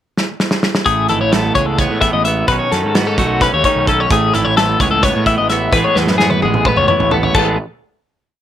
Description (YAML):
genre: math rock and midwest emo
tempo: 260 BPM (eighths)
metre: 7/8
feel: straight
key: A lydian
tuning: A4 = 440 Hz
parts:
  - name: loose indie drum kit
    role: drums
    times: 0.2-7.5 s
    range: crash cymbal, hi-hat, kick drum, snare drum, toms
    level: -18 LUFS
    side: right 1 dB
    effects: none
  - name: twelve-string electric guitar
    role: accompaniment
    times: 0.9-7.6 s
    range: A2 to G#4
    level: -19 LUFS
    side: right 7 dB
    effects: none
  - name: twelve-string electric guitar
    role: arpeggios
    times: 0.9-7.6 s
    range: F#4 to E5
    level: -15 LUFS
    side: left 5 dB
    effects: tremolo
  - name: fuzz picked electric bass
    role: bass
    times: 0.9-7.6 s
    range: G#1 to A2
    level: -20 LUFS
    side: right 1 dB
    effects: overdrive
room: light reverb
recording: none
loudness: -12 LUFS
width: side -10 dB against mid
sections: 0.0-0.9 pickup bar; 0.9-7.3 A section; 7.3-8.4 final chord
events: drum fill 0.2-0.9, 6.0-7.3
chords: 0.0 N.C.; 0.9 Amaj9; 2.5 B9; 4.1 Amaj9; 7.3 Asus2